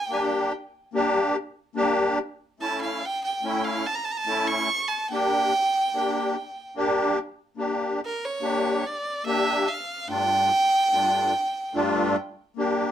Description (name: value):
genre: klezmer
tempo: 72 BPM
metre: 3/4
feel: straight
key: G dorian sharp4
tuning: A4 = 439 Hz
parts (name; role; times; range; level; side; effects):
- clear violin; melody; 0.0-12.2 s; Bb4 to C#6; -24 LUFS; right 2 dB; plate reverb
- musette accordion; accompaniment; 0.1-12.9 s; G2 to G4; -24 LUFS; left 1 dB; none
room: moderate small room reverb, RT60 0.6 s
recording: dark, warm production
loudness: -22 LUFS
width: side -10 dB against mid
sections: 0.0-7.6 A section; 7.6-12.9 B section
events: violin solo 7.6-12.9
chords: 0.0 Gm; 2.6 A; 5.1 Gm; 10.1 Dm/G